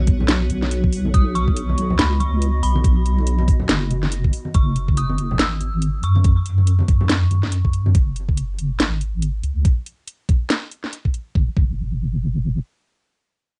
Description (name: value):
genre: deep dubstep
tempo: 141 BPM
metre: 4/4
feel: swing 59% on 16ths, half-time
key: unclear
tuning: A4 = 440 Hz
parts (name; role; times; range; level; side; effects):
- granular cloud pad; sustained chords; 0.0-4.5 s; B3 to D#5; -34 LUFS; equal; built-in reverb
- deep soft wobble bass; bass; 0.0-12.6 s; F#1 to F#2; -22 LUFS; equal; chorus
- electronic kick drum; drums; 0.1-11.7 s; none; -19 LUFS; equal; small room ambience, cassette tape
- garage drum kit; drums; 0.1-11.2 s; hi-hat, snare drum; -24 LUFS; equal; small room ambience, cassette tape
- congas; percussion; 0.2-7.9 s; none; -32 LUFS; equal; none
- dark detuned synth bell; melody; 1.1-7.7 s; B5 to E6; -31 LUFS; equal; chorus, cassette tape, dub echo
room: little or no reverb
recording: home recording on cassette, nothing above 10.7 kHz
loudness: -20 LUFS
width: mono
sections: 0.0-4.5 A section; 4.5-11.4 B section; 11.4-13.6 C section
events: drop 0.0-4.5; filter sweep on wobble bass 4.5-9.6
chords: 0.0 B; 4.5 F#5; 11.4 N.C.